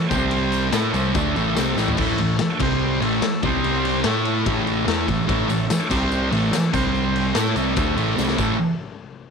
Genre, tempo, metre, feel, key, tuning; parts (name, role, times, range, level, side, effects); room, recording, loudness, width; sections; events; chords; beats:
garage rock duo or trio; 145 BPM; 4/4; straight; A4 = 441 Hz
combo organ; sustained chords; 0.0-8.6 s; C4 to C#5; -29 LUFS; right 1 dB
thick fuzz guitar; riff; 0.1-8.6 s; A2 to A4; -20 LUFS; right 1 dB; distortion
hollow-body short-scale picked electric bass; bass; 0.1-8.6 s; A1 to A2; -27 LUFS; right 1 dB
raw garage drum kit; drums; 0.1-8.5 s; crash cymbal, kick drum, ride cymbal, snare drum, toms; -26 LUFS; left 4 dB
tambourine; percussion; 0.1-1.9, 5.3-8.6 s; -38 LUFS; right 18 dB
light reverb, studio reverb; 1960s-style stereo; -18 LUFS; side -5 dB against mid
0.0-2.0 A section; 2.0-8.6 A section
drum fill 1.8, 8.2-8.6
0.1 C5; 0.7 A; 2.6 C5; 3.0 A; 3.4 C5; 4.0 A; 5.9 C5; 6.3 A; 6.7 C5; 7.3 A; 8.6 N.C.
| 0.32 0.74 1.15 1.57 | 1.98 2.40 2.81 3.22 | 3.63 4.05 4.46 4.87 | 5.29 5.70 6.11 6.52 | 6.94 7.35 7.76 8.18